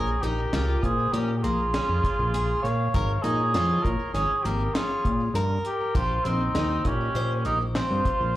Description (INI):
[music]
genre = progressive instrumental, band music in an uneven meter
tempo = 100 BPM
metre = 5/4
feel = straight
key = Bb dorian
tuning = A4 = 437 Hz
[part]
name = dark cor anglais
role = melody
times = 0.0-8.4 s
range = C4 to Db5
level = -27 LUFS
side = right 1 dB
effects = slapback echo, tape echo
[part]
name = warm flugelhorn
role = second line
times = 0.0-8.4 s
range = Eb4 to F5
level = -33 LUFS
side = equal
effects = slapback echo
[part]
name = picked twelve-string acoustic guitar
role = arpeggios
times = 0.0-8.1 s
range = Bb3 to C5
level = -32 LUFS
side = equal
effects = slapback echo, tape echo
[part]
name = fat analog bass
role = bass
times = 0.0-8.4 s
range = Ab1 to Bb2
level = -26 LUFS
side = equal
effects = none
[part]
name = deep reggae drum kit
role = drums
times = 0.2-8.2 s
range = hi-hat, kick drum, snare drum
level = -29 LUFS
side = equal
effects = none
[sound]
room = little or no reverb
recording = live gig heard through the venue's PA, club reverb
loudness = -22 LUFS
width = side -15 dB against mid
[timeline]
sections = 0.0-8.4 A section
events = none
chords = 0.0 Bbm7; 6.0 Cm/Bb